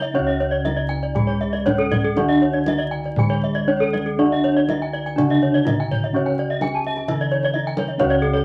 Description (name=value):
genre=Balinese gamelan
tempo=119-133 BPM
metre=4/4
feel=straight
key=C# pelog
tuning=A4 = 440 Hz
part: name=gamelan-type bronze metallophone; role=melody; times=0.0-8.4 s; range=C#4 to G#4-45c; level=-27 LUFS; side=equal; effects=none
part: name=gamelan-type bronze metallophone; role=arpeggios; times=0.0-8.3 s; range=A4-40c to A5-40c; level=-26 LUFS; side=equal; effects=none
part: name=gamelan-type bossed gongs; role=bass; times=0.0-8.4 s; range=C#2 to D4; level=-28 LUFS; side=equal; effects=none
part: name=gamelan-type bronze metallophone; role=accompaniment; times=0.1-8.4 s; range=C#3 to G#3-45c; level=-28 LUFS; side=equal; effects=none
part: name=gamelan-type bronze metallophone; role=arpeggios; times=0.3-8.4 s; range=A4-40c to A5-40c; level=-29 LUFS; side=equal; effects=none
part: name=kendang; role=percussion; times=0.4-8.2 s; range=none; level=-28 LUFS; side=equal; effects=none
room=moderate studio ambience, RT60 0.5 s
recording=vinyl crackle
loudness=-20 LUFS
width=mono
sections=0.0-8.0 A section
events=none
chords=none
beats=| 0.14 0.65 1.15 1.66 | 2.16 2.66 3.17 3.67 | 4.18 4.68 5.17 5.66 | 6.13 6.61 7.07 7.53 | 7.99 8.44